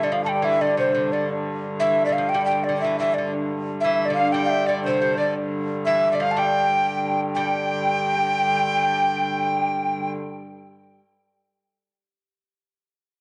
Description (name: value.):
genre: medieval dance.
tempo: 119 BPM (dotted quarters).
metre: 6/8.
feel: straight.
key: unclear.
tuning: A4 = 441 Hz.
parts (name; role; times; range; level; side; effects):
breathy mellow tenor recorder; melody; 0.0-10.1 s; C5 to A5; -24 LUFS; equal; none.
lute; second line; 0.0-10.8 s; C3 to G3; -32 LUFS; equal; none.
dark hurdy-gurdy; drone; 0.0-10.2 s; G2 to D3; -31 LUFS; equal; none.
bright tenor recorder; second line; 3.8-10.1 s; C5 to G5; -28 LUFS; equal; none.
room: wet spring reverb, RT60 1.7 s, studio reverb.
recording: nothing above 10.5 kHz.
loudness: -22 LUFS.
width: mono.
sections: 0.0-7.4 A section; 7.4-9.4 B section.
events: none.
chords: none.